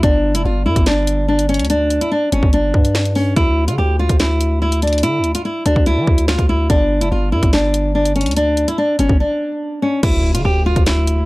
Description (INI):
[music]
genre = hip hop, drill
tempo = 144 BPM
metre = 4/4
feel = half-time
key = D harmonic minor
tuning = A4 = 443 Hz
[part]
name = nylon-string guitar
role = melody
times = 0.0-11.3 s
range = C#4 to G4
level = -17 LUFS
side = equal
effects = none
[part]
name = growling 808-style bass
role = bass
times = 0.0-11.3 s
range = F1 to F3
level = -18 LUFS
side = equal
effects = none
[part]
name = drill drum kit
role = drums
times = 0.0-11.2 s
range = crash cymbal, finger snaps, hi-hat, kick drum, snare drum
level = -17 LUFS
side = equal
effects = none
[part]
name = impact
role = sound effects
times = 10.0-11.3 s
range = none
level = -25 LUFS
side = equal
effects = none
[sound]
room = digital ambience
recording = dry, gritty hardware recording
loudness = -14 LUFS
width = side -21 dB against mid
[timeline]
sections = 0.0-10.0 A section; 10.0-11.3 B section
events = break 9.2-10.0; impact 10.0-11.3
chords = 0.0 G5; 3.4 Dsus2; 6.7 G5; 10.0 Dmadd9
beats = | 0.03 0.45 0.86 1.28 | 1.70 2.12 2.53 2.95 | 3.37 3.78 4.20 4.62 | 5.03 5.45 5.87 6.28 | 6.70 7.12 7.53 7.95 | 8.37 8.78 9.20 9.62 | 10.03 10.45 10.87